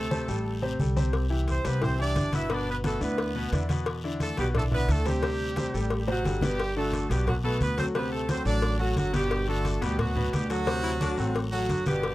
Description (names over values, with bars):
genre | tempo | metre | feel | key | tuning
latin, salsa | 176 BPM | 4/4 | straight | G major | A4 = 437 Hz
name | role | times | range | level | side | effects
brilliant horn section | melody | 0.0-12.1 s | F#3 to E5 | -31 LUFS | right 2 dB | none
bright grand piano | accompaniment | 0.0-12.1 s | B2 to C5 | -31 LUFS | left 2 dB | none
upright bass | bass | 0.0-12.1 s | G1 to E2 | -29 LUFS | equal | none
congas | percussion | 0.1-12.1 s | none | -31 LUFS | equal | none
guiro | percussion | 0.1-12.1 s | none | -44 LUFS | left 5 dB | none
cowbell and bongos | percussion | 1.1-12.1 s | none | -35 LUFS | left 4 dB | none
bright baritone saxophone | second line | 10.8-11.4 s | C4 to E4 | -33 LUFS | left 4 dB | none
room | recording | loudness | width
light reverb | dry, close 1970s-style studio recording | -25 LUFS | side -17 dB against mid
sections
0.0-6.6 A section; 6.6-12.1 B section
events
drum fill 6.1-6.6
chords
0.0 D7sus4; 1.1 Cmaj9; 2.5 G69; 3.9 Em7; 5.2 Gmaj7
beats
0.12 0.46 0.80 | 1.14 1.48 1.82 2.16 | 2.50 2.84 3.18 3.52 | 3.86 4.21 4.54 4.89 | 5.23 5.57 5.91 6.25 | 6.59 6.93 7.27 7.61 | 7.95 8.29 8.63 8.97 | 9.31 9.65 9.99 10.33 | 10.67 11.01 11.35 11.69 | 12.03